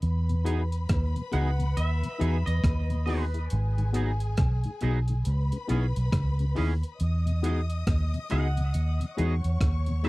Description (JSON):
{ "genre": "lovers rock reggae", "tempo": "69 BPM", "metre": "4/4", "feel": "swing 61% on 16ths", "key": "E major", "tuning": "A4 = 441 Hz", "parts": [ { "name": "warm studio string section", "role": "second line", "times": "0.0-10.1 s", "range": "G#4 to D#6", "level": "-40 LUFS", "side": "left 4 dB", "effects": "none" }, { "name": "vintage muted fingered electric bass", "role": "bass", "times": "0.0-10.1 s", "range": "G#1 to E2", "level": "-26 LUFS", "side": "equal", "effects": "none" }, { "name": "breakbeat sampler-style drum kit", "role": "drums", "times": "0.0-10.1 s", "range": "hi-hat, kick drum, rim click", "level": "-29 LUFS", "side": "equal", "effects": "none" }, { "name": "mellow tonewheel organ", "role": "accompaniment", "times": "0.3-10.1 s", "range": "E2 to G#4", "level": "-35 LUFS", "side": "left 3 dB", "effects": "chorus vibrato, slow rotary speaker" }, { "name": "mellow tine electric piano", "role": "accompaniment", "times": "0.4-10.1 s", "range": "B3 to G#4", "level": "-32 LUFS", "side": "left 3 dB", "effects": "none" }, { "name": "twangy electric guitar", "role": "stabs", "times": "0.4-10.1 s", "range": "E3 to G#4", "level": "-36 LUFS", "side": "right 5 dB", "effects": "analog chorus" }, { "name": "twangy electric guitar", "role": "melody", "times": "1.3-10.1 s", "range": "B4 to F#5", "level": "-38 LUFS", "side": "right 1 dB", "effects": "lush chorus, tape echo" } ], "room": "little or no reverb", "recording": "dry, close 1970s-style studio recording", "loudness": "-24 LUFS", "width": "side -21 dB against mid", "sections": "0.0-10.1 A section", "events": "none", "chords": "0.0 Emaj7; 3.5 G#m7; 5.2 C#m7; 7.0 Emaj7" }